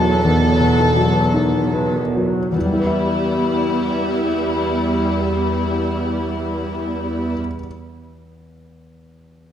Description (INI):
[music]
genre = classical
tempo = 47-58 BPM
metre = 4/4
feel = rubato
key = E minor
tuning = A4 = 435 Hz
[part]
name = clear grand piano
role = melody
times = 0.0-9.5 s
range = E2 to E5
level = -21 LUFS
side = left 1 dB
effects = none
[part]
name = warm symphonic violin section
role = second line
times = 0.0-7.4 s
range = E4 to A4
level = -22 LUFS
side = left 3 dB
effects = none
[part]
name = dark symphonic viola section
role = accompaniment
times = 0.0-7.4 s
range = D#3 to B3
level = -23 LUFS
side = equal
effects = none
[part]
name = warm symphonic cello section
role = bass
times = 0.0-7.3 s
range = E2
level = -24 LUFS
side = right 4 dB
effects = none
[sound]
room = moderate scoring stage reverb, RT60 1.9 s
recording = none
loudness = -16 LUFS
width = side -9 dB against mid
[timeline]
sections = 0.0-2.5 A section; 2.5-6.9 B section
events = slowing down 0.0-2.5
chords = 0.0 B7/E; 2.5 Em